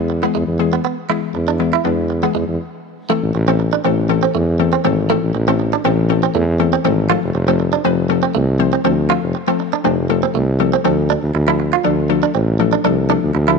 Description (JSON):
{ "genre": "pop", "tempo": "120 BPM", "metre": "4/4", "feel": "straight", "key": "A harmonic minor", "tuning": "A4 = 445 Hz", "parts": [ { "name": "hollow square pluck", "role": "accompaniment", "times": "0.0-13.6 s", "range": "E3 to C5", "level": "-19 LUFS", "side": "left 14 dB", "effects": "chorus" }, { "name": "warm tuba", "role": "bass", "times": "0.0-13.6 s", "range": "F1 to E2", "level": "-18 LUFS", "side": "right 1 dB", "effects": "none" }, { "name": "direct-recorded clean electric guitar", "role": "riff", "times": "0.1-13.6 s", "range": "G#3 to F4", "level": "-20 LUFS", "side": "right 15 dB", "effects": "lush chorus" } ], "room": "light reverb, small room reverb", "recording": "1960s-style stereo with parts hard left and right", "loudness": "-14 LUFS", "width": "side -4 dB against mid", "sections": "0.0-3.1 A section; 3.1-13.6 B section", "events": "stop 2.6-3.1", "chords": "0.0 E; 3.1 Am; 7.1 F; 10.8 Dm", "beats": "0.10 0.60 | 1.10 1.60 2.10 2.60 | 3.10 3.60 4.10 4.60 | 5.10 5.60 6.10 6.60 | 7.10 7.60 8.10 8.60 | 9.10 9.60 10.10 10.60 | 11.10 11.60 12.10 12.60 | 13.10" }